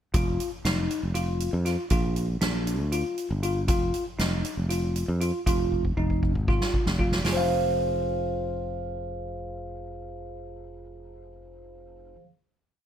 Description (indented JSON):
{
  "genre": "progressive instrumental, band music in an uneven meter",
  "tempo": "236 BPM (eighths)",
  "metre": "7/8",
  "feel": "straight",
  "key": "F dorian",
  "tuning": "A4 = 440 Hz",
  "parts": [
    { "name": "bell-like tine electric piano", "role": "arpeggios", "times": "0.1-12.3 s", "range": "D4 to F5", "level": "-30 LUFS", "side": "equal", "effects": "lush chorus" },
    { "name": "sustaining fretless electric bass", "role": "bass", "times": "0.1-12.2 s", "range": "F1 to F2", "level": "-29 LUFS", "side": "equal", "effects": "none" },
    { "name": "soft-mallet drum kit", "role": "drums", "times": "0.1-7.4 s", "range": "hi-hat, kick drum, snare drum", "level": "-28 LUFS", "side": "equal", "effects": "none" }
  ],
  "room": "light reverb",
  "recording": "none",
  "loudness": "-24 LUFS",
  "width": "side -10 dB against mid",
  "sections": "0.1-7.2 A section; 7.2-10.8 final chord",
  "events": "drum fill 5.7-7.2",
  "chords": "0.1 Ebsus2/F; 1.9 Bb; 3.7 Ebsus2/F; 5.5 Fm7; 7.2 Fm"
}